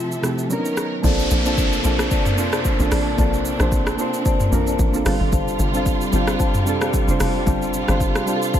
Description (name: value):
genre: amapiano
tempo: 112 BPM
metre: 4/4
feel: swing 55% on 16ths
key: unclear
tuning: A4 = 438 Hz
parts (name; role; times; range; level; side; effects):
- hollow clarinet-like synth lead; melody; 0.0-0.5 s; F4; -31 LUFS; left 1 dB; chorus, ping-pong delay
- soft electric-piano-like synth keys; accompaniment; 0.0-8.6 s; C3 to E5; -23 LUFS; right 3 dB; chorus
- warm studio string section; sustained chords; 0.0-8.6 s; C3 to E5; -28 LUFS; right 1 dB; none
- afro-pop drum kit; drums; 0.1-8.6 s; hi-hat, kick drum, rim click, shaker, toms; -22 LUFS; equal; overdrive
- marimba with medium mallets; stabs; 1.0-8.6 s; C5 to A5; -27 LUFS; left 10 dB; ping-pong delay
- tight log drum bass; bass; 1.0-8.2 s; F1 to Bb1; -22 LUFS; equal; none
- downlifter; sound effects; 1.0-5.3 s; none; -28 LUFS; equal; none
room: little or no reverb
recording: none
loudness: -17 LUFS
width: side -10 dB against mid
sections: 0.0-1.0 A section; 1.0-8.6 B section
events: break 0.0-1.0; drop 1.0-8.6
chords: 0.0 Fmaj7/C; 0.5 Bmaj9; 1.0 Bbmaj9; 5.1 G9sus4